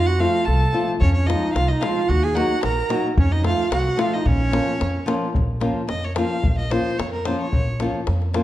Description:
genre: balkan folk, Balkan wedding band.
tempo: 111 BPM.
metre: 2/4.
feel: straight.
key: Bb minor.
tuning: A4 = 440 Hz.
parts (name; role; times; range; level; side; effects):
rich violin; melody; 0.0-7.9 s; Bb4 to Bb5; -27 LUFS; equal; none.
clear clarinet; second line; 0.0-5.1 s; Db4 to Bb4; -24 LUFS; right 4 dB; none.
upright bass; bass; 0.0-8.4 s; Bb1 to F2; -22 LUFS; equal; none.
nylon-string guitar; accompaniment; 0.2-8.4 s; F3 to Gb4; -24 LUFS; left 2 dB; none.
davul; percussion; 1.0-8.4 s; none; -26 LUFS; left 2 dB; none.
room: moderate recital hall reverb, RT60 1.4 s.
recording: dark, warm production.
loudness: -18 LUFS.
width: side -14 dB against mid.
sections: 0.0-5.3 A section; 5.3-8.4 B section.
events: violin solo 5.3-8.4.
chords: 0.0 F; 1.0 Fm; 2.1 Ebm; 3.2 F; 4.3 Bbm.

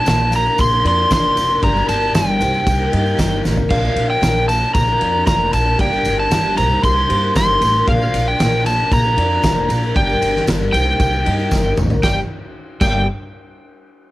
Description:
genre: folk rock and heartland rock.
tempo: 115 BPM.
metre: 4/4.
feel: straight.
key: G minor.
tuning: A4 = 440 Hz.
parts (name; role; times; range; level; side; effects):
overdriven slide guitar; melody; 0.0-13.1 s; F5 to C6; -17 LUFS; equal; cassette tape.
overdriven reed electric piano; accompaniment; 0.0-13.1 s; D4 to Bb5; -28 LUFS; right 3 dB; fast tremolo, cassette tape.
picked twelve-string acoustic guitar; accompaniment; 0.0-13.0 s; G2 to Bb4; -23 LUFS; left 3 dB; cassette tape.
upright bass; bass; 0.1-13.1 s; F1 to G2; -20 LUFS; equal; none.
loose indie drum kit; drums; 0.1-12.9 s; crash cymbal, kick drum, ride cymbal, snare drum, toms; -20 LUFS; equal; none.
tambourine; percussion; 0.1-13.1 s; none; -36 LUFS; right 3 dB; none.
room: little or no reverb.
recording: home recording on cassette.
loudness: -14 LUFS.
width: side -17 dB against mid.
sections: 0.0-12.0 A section; 12.0-14.1 B section.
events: reed electric piano fill 2.7-3.7; drum fill 3.4, 11.5-12.0.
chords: 0.0 Bb; 1.6 Gm; 2.4 Cm7; 3.7 Bb; 5.8 Gm; 6.6 Cm7; 7.9 Bb; 10.0 Gm; 10.7 Cm7; 12.0 Gm.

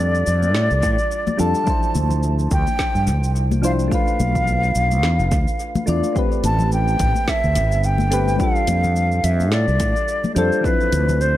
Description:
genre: sunset chillout.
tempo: 107 BPM.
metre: 4/4.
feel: swing 56% on 16ths.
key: unclear.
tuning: A4 = 440 Hz.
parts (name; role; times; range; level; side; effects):
wooden flute; melody; 0.0-11.4 s; B4 to A5; -22 LUFS; equal; tape echo.
soft electric-piano-like synth keys; accompaniment; 0.0-11.4 s; F3 to D5; -25 LUFS; moving between left 4 dB and right 4 dB; chorus, auto-pan, tape echo.
fretless electric bass; bass; 0.0-11.4 s; F1 to A2; -19 LUFS; equal; none.
smooth R&B drum kit; drums; 0.1-11.3 s; hi-hat, shaker, snare drum; -30 LUFS; equal; analog delay.
congas; percussion; 0.4-11.2 s; none; -29 LUFS; left 4 dB; none.
electronic kick drum; drums; 0.8-10.8 s; none; -22 LUFS; equal; overdrive.
room: digital ambience.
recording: echo-heavy mix.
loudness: -16 LUFS.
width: side -14 dB against mid.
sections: 0.0-11.4 A section.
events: none.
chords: 0.0 F69; 1.7 Dm9; 3.9 Bm7b5; 6.2 Am9; 8.4 F69; 10.6 Dm9.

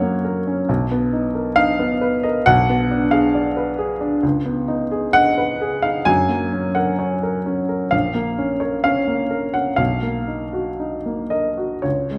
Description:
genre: classical, romantic character piece for solo piano.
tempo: 56-69 BPM.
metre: 4/4.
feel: rubato.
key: unclear.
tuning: A4 = 440 Hz.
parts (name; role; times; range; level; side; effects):
warm baby grand piano; solo; 0.0-12.2 s; A#1 to G#5; -20 LUFS; equal; none.
room: wet recital hall reverb, RT60 1.7 s.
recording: none.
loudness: -20 LUFS.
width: mono.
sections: 0.0-12.2 A section.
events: none.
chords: 0.0 Gb; 0.7 Bmaj7; 2.5 G#dim/B; 4.2 C#sus2; 6.1 F#; 7.9 A#m; 9.8 Bmaj7.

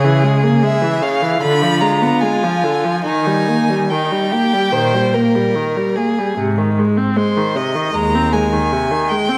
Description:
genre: classical, slow romantic movement for string quartet.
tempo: 70-79 BPM.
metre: 4/4.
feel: rubato.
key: Ab major.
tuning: A4 = 440 Hz.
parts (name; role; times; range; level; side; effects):
warm violin; second line; 0.0-6.4 s; Eb4 to C5; -23 LUFS; equal; none.
rich viola; accompaniment; 0.0-9.4 s; C3 to C4; -20 LUFS; equal; none.
rich cello; bass; 0.0-8.6 s; Eb2 to Eb3; -22 LUFS; equal; none.
rich violin; melody; 0.6-9.4 s; C5 to B5; -22 LUFS; equal; none.
room: wet scoring stage reverb, RT60 1.4 s.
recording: none.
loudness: -16 LUFS.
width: mono.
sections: 0.0-9.4 A section.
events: none.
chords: 0.0 Bbm7b5/Db; 1.4 Ddim7; 3.1 Eb; 6.4 Ab.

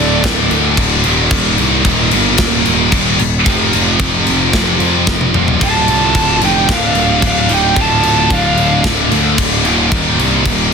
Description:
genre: heavy metal.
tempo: 112 BPM.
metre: 4/4.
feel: straight.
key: D phrygian.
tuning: A4 = 440 Hz.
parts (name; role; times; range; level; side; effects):
bluesy overdriven lead guitar; melody; 0.0-0.2, 5.6-8.8 s; D5 to A5; -17 LUFS; right 3 dB; distortion, ping-pong delay.
high-gain lead guitar; second line; 0.0-0.2, 5.6-8.8 s; A3 to F4; -25 LUFS; right 6 dB; distortion, ping-pong delay.
heavy high-gain guitar; riff; 0.0-10.7 s; D2 to F3; -16 LUFS; right 16 dB; distortion.
scooped high-gain guitar; riff; 0.0-10.7 s; D2 to F3; -16 LUFS; left 15 dB; distortion.
fuzz picked electric bass; bass; 0.0-10.7 s; D1 to F2; -17 LUFS; equal; overdrive.
tight metal drum kit; drums; 0.2-10.6 s; crash cymbal, kick drum, snare drum, toms; -16 LUFS; left 1 dB; soft clipping on kick.
room: little or no reverb.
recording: dense, heavily limited modern master.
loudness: -10 LUFS.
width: side -6 dB against mid.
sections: 0.0-10.7 A section.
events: half time 0.0-10.7; drum fill 5.1-5.6.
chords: 0.0 D5; 1.0 Eb5; 3.5 F5; 5.6 Dm; 9.7 Eb5.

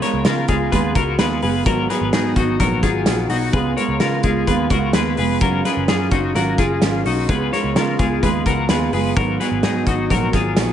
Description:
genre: jangly indie pop.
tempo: 128 BPM.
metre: 4/4.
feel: straight.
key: Db mixolydian.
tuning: A4 = 437 Hz.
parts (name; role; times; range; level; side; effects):
fingerpicked steel-string acoustic guitar; accompaniment; 0.0-10.7 s; Ab2 to Gb4; -21 LUFS; right 4 dB; analog delay.
twelve-string electric guitar; arpeggios; 0.0-10.7 s; Eb4 to Db5; -21 LUFS; left 5 dB; harmonic tremolo, analog delay.
loose indie drum kit; drums; 0.0-10.7 s; hi-hat, kick drum, snare drum; -21 LUFS; equal; none.
vintage muted picked electric bass; bass; 0.1-10.7 s; F1 to Db3; -23 LUFS; equal; none.
room: light reverb, small room reverb.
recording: echo-heavy mix, nothing above 10.7 kHz.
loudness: -16 LUFS.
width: side -10 dB against mid.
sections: 0.0-10.7 A section.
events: none.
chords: 0.0 Db7; 1.7 Abm7; 3.5 Db7; 5.4 Gbmaj7; 9.2 Abm7.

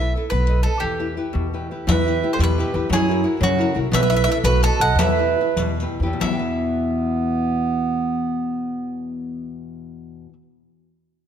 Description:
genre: italian folk, Italian serenade.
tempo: 88-119 BPM (dotted quarters).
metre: 6/8.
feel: rubato.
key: E minor.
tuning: A4 = 439 Hz.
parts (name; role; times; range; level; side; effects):
bowl-back mandolin; melody; 0.0-10.3 s; F#4 to F#5; -24 LUFS; equal; none.
nylon-string guitar; accompaniment; 0.0-10.4 s; E2 to D#5; -26 LUFS; left 3 dB; none.
upright bass; bass; 0.0-10.3 s; B1 to F#2; -23 LUFS; equal; none.
mellow clarinet; second line; 1.9-9.6 s; B3 to D#5; -24 LUFS; right 5 dB; none.
riq; percussion; 1.9-6.4 s; none; -26 LUFS; left 4 dB; none.
room: light reverb.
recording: none.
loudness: -18 LUFS.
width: side -8 dB against mid.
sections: 0.0-1.9 A section; 1.9-6.2 B section; 6.2-8.9 C section.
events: slowing down 3.9-6.2.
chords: 0.3 B7; 0.8 Em; 2.9 F#7; 3.9 B7sus4; 4.4 B7; 5.0 Em; 6.2 E5.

